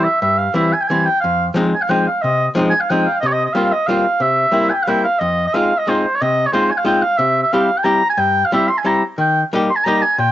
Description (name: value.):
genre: musette waltz.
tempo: 181 BPM.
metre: 3/4.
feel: rubato.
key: F minor.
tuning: A4 = 440 Hz.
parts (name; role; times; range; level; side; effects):
warm oboe; melody; 0.0-10.3 s; C5 to C6; -16 LUFS; right 1 dB; cassette tape.
archtop guitar, miked and amplified; accompaniment; 0.0-10.3 s; F2 to G4; -18 LUFS; left 1 dB; cassette tape.
room: light reverb, studio reverb.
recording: home recording on cassette, nothing above 7.8 kHz.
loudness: -14 LUFS.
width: side -13 dB against mid.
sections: 0.0-10.3 A section.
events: none.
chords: 0.0 C; 1.2 Fm7; 3.2 C7sus4; 4.2 C7; 5.2 Fm7; 7.2 C; 9.2 Eb.